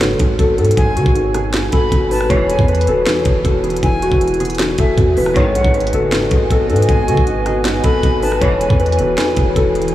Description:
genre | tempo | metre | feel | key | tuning
hip hop, trap | 157 BPM | 4/4 | half-time | G# phrygian | A4 = 440 Hz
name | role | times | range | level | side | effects
concert harp | melody | 0.0-9.9 s | E4 to C#5 | -18 LUFS | left 2 dB | low-pass filter
dark concert grand piano | accompaniment | 0.0-9.9 s | E2 to B3 | -20 LUFS | right 1 dB | low-pass filter
long sustained 808-style bass | bass | 0.0-9.9 s | D#1 to D#3 | -20 LUFS | equal | none
trap drum kit | drums | 0.0-9.9 s | hi-hat, kick drum, rim click, snare drum | -18 LUFS | equal | none
impact | sound effects | 0.0-0.8 s | none | barely audible | none | none
breathy silver concert flute | second line | 0.8-8.8 s | E5 to B5 | -26 LUFS | equal | tape echo
rich symphonic string section | stabs | 2.3-2.6, 5.4-5.6, 8.4-8.7 s | G#2 to E3 | -29 LUFS | left 1 dB | none
warbly tape-like pad | sustained chords | 5.9-9.9 s | E3 to G#5 | -23 LUFS | right 2 dB | chorus, built-in reverb
room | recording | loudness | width
moderate huge ambient reverb, RT60 8.9 s | dreamy mix soaked in reverb, small room ambience | -12 LUFS | side -14 dB against mid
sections
0.0-9.9 A section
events
impact 0.0-0.8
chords
0.0 G#m; 2.3 E; 5.4 G#m; 8.4 E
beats
0.01 0.39 | 0.77 1.15 1.54 1.92 | 2.30 2.68 3.06 3.45 | 3.83 4.21 4.59 4.98 | 5.36 5.74 6.12 6.50 | 6.89 7.27 7.65 8.03 | 8.42 8.80 9.18 9.56 | 9.94

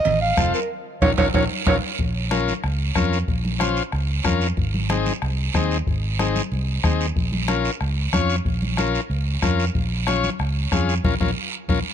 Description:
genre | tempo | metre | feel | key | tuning
latin, cumbia | 186 BPM | 4/4 | straight | Bb minor | A4 = 440 Hz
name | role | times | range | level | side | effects
mellow clarinet | melody | 0.0-1.8 s | Bb4 to F5 | -23 LUFS | right 3 dB | none
cowbell and timbales | percussion | 0.0-1.7 s | none | -28 LUFS | right 8 dB | none
fingered electric bass | bass | 0.1-11.8 s | F1 to F2 | -23 LUFS | right 1 dB | none
congas | percussion | 0.1-11.8 s | none | -30 LUFS | equal | none
guiro | percussion | 0.1-11.8 s | none | -31 LUFS | right 8 dB | none
overdriven combo organ | accompaniment | 0.4-11.8 s | C4 to Db5 | -26 LUFS | left 7 dB | none
bombo | percussion | 0.4-11.8 s | none | -24 LUFS | left 2 dB | none
room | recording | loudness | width
little or no reverb | close, detailed microphones | -19 LUFS | side -9 dB against mid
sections
0.0-2.0 A section; 2.0-11.9 B section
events
band accent 0.7-2.0, 11.0-11.9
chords
0.0 F7; 0.7 Bbm; 4.6 Ab; 7.2 Bbm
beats
0.05 0.37 | 0.70 1.02 1.34 1.67 | 1.99 2.31 2.64 2.96 | 3.28 3.61 3.93 4.25 | 4.58 4.90 5.22 5.55 | 5.87 6.19 6.52 6.84 | 7.16 7.49 7.81 8.13 | 8.46 8.78 9.10 9.43 | 9.75 10.07 10.39 10.72 | 11.04 11.36 11.69

